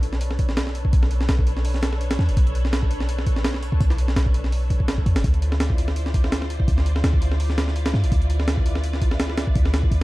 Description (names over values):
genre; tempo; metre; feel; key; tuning
drum and bass, jungle; 167 BPM; 4/4; swing 54% on 16ths; B minor; A4 = 440 Hz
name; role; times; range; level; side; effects
soft string machine; sustained chords; 0.0-10.0 s; D4 to D5; -32 LUFS; equal; ensemble chorus
warm 808-style bass; bass; 0.0-10.0 s; F#1 to G2; -22 LUFS; equal; tube saturation
breakbeat sampler-style drum kit; drums; 0.0-10.0 s; hi-hat, kick drum, snare drum; -22 LUFS; equal; none
room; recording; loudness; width
little or no reverb; dark, warm production, vinyl crackle; -19 LUFS; side -19 dB against mid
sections
0.0-10.0 A section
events
none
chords
0.0 Bm9; 5.2 Dm9